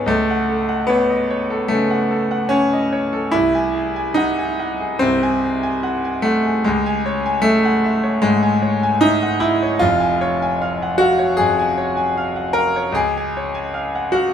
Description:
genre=classical, romantic character piece for solo piano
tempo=75 BPM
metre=4/4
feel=uneven beats, rubato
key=Db major from 9.8 s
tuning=A4 = 440 Hz
part: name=bright concert grand piano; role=solo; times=0.0-14.3 s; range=F1 to G#5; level=-16 LUFS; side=equal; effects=none
room=moderate large studio reverb, RT60 1.1 s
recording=minimal, uncompressed stereo recording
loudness=-16 LUFS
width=side -8 dB against mid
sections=0.0-14.3 A section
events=none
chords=0.1 F#m/C#; 3.3 G#7/B#; 6.6 C#m; 9.8 Db/F; 13.0 Db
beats=| 0.09 0.89 1.71 2.51 | 3.33 4.17 4.99 5.82 | 6.65 7.46 8.25 9.04 | 9.82 10.61 11.39 12.16 | 12.96 13.74

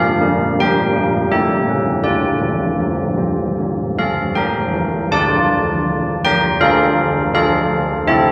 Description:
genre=classical, tune for church bells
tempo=79 BPM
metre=4/4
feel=straight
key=D minor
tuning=A4 = 441 Hz
part: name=old church bells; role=solo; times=0.0-8.3 s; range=D3 to A5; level=-17 LUFS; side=equal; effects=none
room=moderate scoring stage reverb, RT60 1.6 s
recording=close, detailed microphones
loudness=-17 LUFS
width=mono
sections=0.0-5.1 A section; 5.1-8.3 B section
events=none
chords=0.0 Dm; 0.6 Gm; 1.3 A7; 2.1 Dm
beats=0.55 1.30 | 2.06 2.83 3.59 4.36 | 5.13 5.88 6.63 7.37 | 8.12

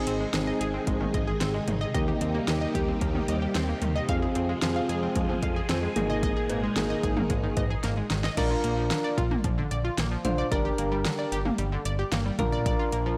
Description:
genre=synth-pop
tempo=112 BPM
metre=4/4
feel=straight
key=Bb mixolydian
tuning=A4 = 440 Hz
part: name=soft electric-piano-like synth keys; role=accompaniment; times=0.0-13.2 s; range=Bb3 to C5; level=-32 LUFS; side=equal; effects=chorus, tremolo
part: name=phased string machine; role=sustained chords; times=0.0-8.4 s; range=Bb2 to Ab4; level=-36 LUFS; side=equal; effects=ensemble chorus, phaser
part: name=analog pluck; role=arpeggios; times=0.0-13.1 s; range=D3 to F5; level=-35 LUFS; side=equal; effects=chorus, tape echo
part: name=fat analog bass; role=bass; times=0.1-13.2 s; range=G1 to F2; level=-33 LUFS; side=equal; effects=tube saturation
part: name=deep house drum kit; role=drums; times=0.1-13.1 s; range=cowbell, crash cymbal, hi-hat, kick drum, snare drum, toms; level=-32 LUFS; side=equal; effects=overdrive
room=light reverb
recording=blown-out, overdriven recording, overdrive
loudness=-27 LUFS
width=mono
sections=0.0-8.4 A section; 8.4-13.2 B section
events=drum fill 7.8-8.4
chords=0.0 Ab; 1.9 Eb6; 4.1 Fm; 6.0 Absus2; 8.4 Bb; 10.5 Gm; 12.4 Bb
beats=0.34 0.87 1.41 | 1.95 2.48 3.02 3.55 | 4.09 4.62 5.16 5.70 | 6.23 6.77 7.30 7.84 | 8.37 8.91 9.45 9.98 | 10.52 11.05 11.59 12.12 | 12.66

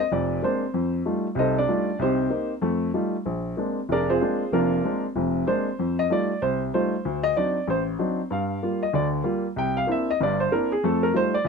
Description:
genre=jazz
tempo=190 BPM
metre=4/4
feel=swing 63% on 8ths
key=F mixolydian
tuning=A4 = 440 Hz
part: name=warm baby grand piano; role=solo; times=0.0-11.5 s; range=F1 to G5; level=-22 LUFS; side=equal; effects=none
room=light reverb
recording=close, detailed microphones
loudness=-22 LUFS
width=side -5 dB against mid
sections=0.0-11.5 A section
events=grand piano solo 0.0-11.5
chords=0.0 Bb9; 0.7 F9; 2.0 Cm7; 2.6 F9; 3.3 Bb9; 5.8 F9; 7.0 D7b9; 8.3 Gm7; 9.6 C9; 10.8 F9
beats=0.10 0.41 | 0.73 1.05 1.36 1.68 | 1.99 2.31 2.62 2.94 | 3.25 3.57 3.88 4.20 | 4.51 4.83 5.14 5.46 | 5.78 6.09 6.41 6.72 | 7.04 7.35 7.67 7.98 | 8.30 8.61 8.93 9.24 | 9.56 9.87 10.19 10.50 | 10.82 11.13 11.45

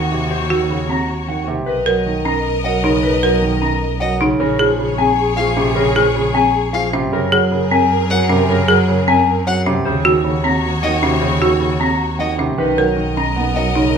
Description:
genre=classical, minimalist pattern music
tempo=308 BPM (eighths)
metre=7/8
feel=straight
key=unclear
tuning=A4 = 440 Hz
part: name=mellow electric guitar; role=melody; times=0.0-13.8 s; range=Bb4 to Bb5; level=-21 LUFS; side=left 4 dB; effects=none
part: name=mellow wooden-headed alto flute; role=second line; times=0.0-14.0 s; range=Eb4 to Bb4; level=-24 LUFS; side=right 1 dB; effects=none
part: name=warm concert grand piano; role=accompaniment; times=0.0-14.0 s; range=C3 to Cb4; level=-21 LUFS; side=right 2 dB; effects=none
part: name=bright studio string section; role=sustained chords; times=0.0-14.0 s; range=Gb4 to Eb5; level=-24 LUFS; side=left 5 dB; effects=none
part: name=clear double bass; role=bass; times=0.0-14.0 s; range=Bb1 to Gb2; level=-21 LUFS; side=right 1 dB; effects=none
part: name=folk marimba with hard mallets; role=arpeggios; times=0.5-14.0 s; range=C4 to Bb4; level=-19 LUFS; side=right 2 dB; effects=none
part: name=rich violin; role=arpeggios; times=2.6-13.7 s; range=Eb5 to Gb5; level=-25 LUFS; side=left 3 dB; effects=none
room=wet stone room reverb, RT60 0.9 s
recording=none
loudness=-14 LUFS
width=side -6 dB against mid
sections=0.0-14.0 A section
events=none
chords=0.0 Ebm7; 1.7 Cbmaj7; 4.4 Bbm7; 7.1 Gbadd9; 9.9 Ebm7; 12.6 Cbmaj7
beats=0.12 | 0.31 0.51 0.70 0.90 1.09 1.29 1.48 | 1.68 1.87 2.07 2.26 2.46 2.65 2.85 | 3.04 3.24 3.43 3.62 3.82 4.01 4.21 | 4.41 4.60 4.79 4.99 5.18 5.38 5.57 | 5.77 5.96 6.16 6.35 6.55 6.74 6.94 | 7.13 7.33 7.52 7.72 7.91 8.11 8.30 | 8.50 8.69 8.88 9.08 9.28 9.47 9.66 | 9.86 10.05 10.25 10.44 10.64 10.83 11.03 | 11.22 11.42 11.61 11.81 12.00 12.20 12.39 | 12.59 12.78 12.98 13.17 13.37 13.56 13.76 | 13.95

